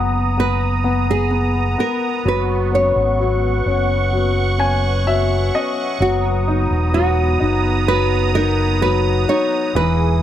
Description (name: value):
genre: pop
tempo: 64 BPM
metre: 4/4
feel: straight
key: B major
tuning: A4 = 440 Hz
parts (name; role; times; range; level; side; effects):
- nylon-string guitar; melody; 0.0-10.2 s; F#4 to C#5; -21 LUFS; right 2 dB; none
- warm grand piano; accompaniment; 0.0-10.2 s; E3 to G#5; -20 LUFS; left 5 dB; none
- sweeping resonant pad; sustained chords; 0.0-10.2 s; B3 to D#6; -23 LUFS; right 4 dB; chorus
- fingered electric bass with an envelope filter; bass; 0.0-10.2 s; E1 to G#1; -19 LUFS; right 1 dB; none
room: light reverb, small room ambience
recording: none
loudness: -15 LUFS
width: side -11 dB against mid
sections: 0.0-10.2 A section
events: grand piano fill 4.1-6.0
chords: 0.0 Bmaj7; 2.3 F#sus4; 6.0 Bmaj7